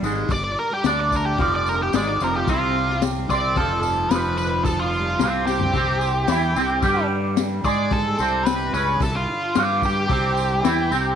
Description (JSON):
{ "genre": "psychedelic rock", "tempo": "110 BPM", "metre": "4/4", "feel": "straight", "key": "unclear", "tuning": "A4 = 439 Hz", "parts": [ { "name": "electric guitar with an envelope filter", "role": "riff", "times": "0.0-11.2 s", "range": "F2 to Ab4", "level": "-23 LUFS", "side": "right 2 dB", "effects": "flanger, double-tracked left and right" }, { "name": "fuzz fingered electric bass", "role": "bass", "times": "0.0-11.2 s", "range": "F1 to Ab2", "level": "-26 LUFS", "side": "right 1 dB", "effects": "overdrive" }, { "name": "tanpura", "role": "drone", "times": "0.0-11.2 s", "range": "G2 to G3", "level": "-36 LUFS", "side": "right 1 dB", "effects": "none" }, { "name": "tambourine", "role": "percussion", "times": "0.0-11.0 s", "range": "none", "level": "-40 LUFS", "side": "right 18 dB", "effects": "none" }, { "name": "octave-fuzz lead guitar", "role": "melody", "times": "0.3-11.2 s", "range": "F4 to D5", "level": "-24 LUFS", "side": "equal", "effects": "wah, distortion, tape echo" }, { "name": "crunchy breakbeat drum kit", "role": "drums", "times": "0.3-10.8 s", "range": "hi-hat, kick drum, snare drum, toms", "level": "-25 LUFS", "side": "left 5 dB", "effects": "none" } ], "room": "light reverb", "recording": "1960s-style stereo", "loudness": "-19 LUFS", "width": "side -8 dB against mid", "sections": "0.0-11.2 A section", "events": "lead electric guitar solo 0.0-11.2; drum fill 5.5", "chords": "0.0 G; 1.4 F5; 5.7 C5" }